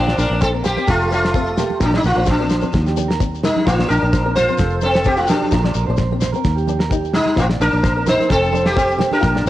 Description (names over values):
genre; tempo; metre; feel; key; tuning
highlife guitar band; 129 BPM; 4/4; swing 54% on 16ths; Bb major; A4 = 440 Hz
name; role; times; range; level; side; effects
sitar; melody; 0.0-9.5 s; F3 to C5; -17 LUFS; equal; cassette tape
fingerpicked swing-style acoustic guitar; accompaniment; 0.0-9.4 s; Bb3 to F4; -28 LUFS; left 8 dB; cassette tape
electric guitar through a small old amp; arpeggios; 0.0-9.5 s; G4 to D5; -27 LUFS; right 7 dB; cassette tape, analog delay
fingered electric bass; bass; 0.0-9.5 s; F1 to Eb2; -21 LUFS; equal; none
damped 70s drum kit; drums; 0.1-9.5 s; kick drum, snare drum; -21 LUFS; equal; cassette tape
congas; percussion; 0.1-9.5 s; none; -29 LUFS; right 7 dB; none
shekere; percussion; 0.2-9.5 s; none; -31 LUFS; left 5 dB; none
room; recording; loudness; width
light reverb, small room ambience; home recording on cassette; -15 LUFS; side -14 dB against mid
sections
0.0-9.5 A section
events
none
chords
0.0 Bbadd9; 0.9 Fadd9; 1.8 Bbadd9; 2.7 Eb; 3.7 Bbadd9; 4.6 Fadd9; 5.5 Bbadd9; 6.4 Eb; 7.4 Bbadd9; 8.3 Fadd9